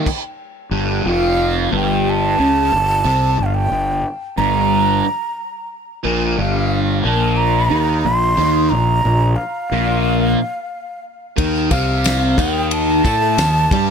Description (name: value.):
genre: psychedelic rock.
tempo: 90 BPM.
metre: 4/4.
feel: straight.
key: G minor.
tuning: A4 = 440 Hz.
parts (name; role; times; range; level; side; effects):
breathy mellow concert flute; melody; 0.0-13.9 s; F5 to C6; -20 LUFS; right 2 dB; digital delay.
fuzz guitar; riff; 0.0-13.9 s; F2 to A4; -18 LUFS; equal; distortion, phaser.
damped 70s drum kit; drums; 0.1-0.2, 11.4-13.9 s; crash cymbal, kick drum, ride cymbal, snare drum; -21 LUFS; left 1 dB; none.
fuzz fingered electric bass; bass; 0.7-13.9 s; F1 to A2; -20 LUFS; left 1 dB; overdrive.
tambourine; percussion; 11.6-13.5 s; none; -33 LUFS; left 20 dB; none.
room: light reverb, small room reverb.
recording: none.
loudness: -14 LUFS.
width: side -6 dB against mid.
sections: 0.7-13.9 A section.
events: stop 0.1-0.7.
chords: 0.0 N.C.; 0.7 Gm; 6.1 Bb5; 11.4 Eb5.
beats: 0.06 | 0.73 1.39 2.06 2.73 | 3.39 4.06 4.72 5.39 | 6.05 6.72 7.38 8.05 | 8.72 9.38 10.05 10.72 | 11.38 12.05 12.72 13.38.